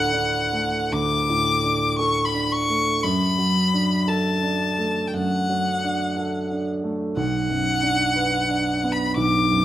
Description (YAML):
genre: classical, romantic duo for violin and grand piano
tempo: 48-61 BPM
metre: 4/4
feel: rubato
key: D major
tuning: A4 = 441 Hz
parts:
  - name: rich violin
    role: melody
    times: 0.0-9.6 s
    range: F#5 to D6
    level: -22 LUFS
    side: left 2 dB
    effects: none
  - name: dark baby grand piano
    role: accompaniment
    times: 0.0-9.6 s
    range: B1 to B4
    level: -22 LUFS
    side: right 1 dB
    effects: none
room: moderate recital hall reverb, RT60 1.5 s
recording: close, detailed microphones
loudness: -20 LUFS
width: side -12 dB against mid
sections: 0.0-9.6 A section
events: none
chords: 0.0 D; 3.0 D/F#; 7.2 Bm